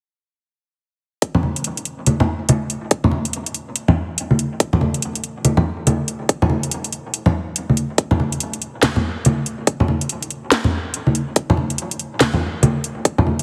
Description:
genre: dubstep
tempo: 142 BPM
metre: 4/4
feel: swing 62% on 16ths, half-time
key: none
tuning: none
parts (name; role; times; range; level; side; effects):
- electronic kick drum; drums; 1.2-13.2 s; none; -19 LUFS; equal; high-pass filter on kick, high-pass filter on room
- garage drum kit; drums; 1.2-13.4 s; hi-hat, snare drum; -22 LUFS; equal; none
- congas; percussion; 1.3-13.4 s; none; -21 LUFS; equal; dub echo
room: moderate echo chamber reverb, RT60 1.9 s, digital ambience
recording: heavily compressed radio sound, multiband compression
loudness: -20 LUFS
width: mono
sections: 1.2-13.4 A section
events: none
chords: none

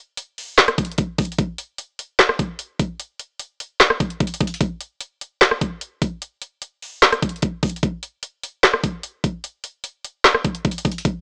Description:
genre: hip hop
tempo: 149 BPM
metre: 4/4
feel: half-time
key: none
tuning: none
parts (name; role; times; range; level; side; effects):
- trap drum kit; drums; 0.2-11.1 s; handclaps, hi-hat, kick drum, rim click, snare drum; -16 LUFS; equal; none
room: light reverb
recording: dry, gritty hardware recording, transformer saturation, cassette tape, small speaker sound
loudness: -17 LUFS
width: side -39 dB against mid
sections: 0.0-7.8 A section; 7.8-11.2 B section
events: none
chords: none

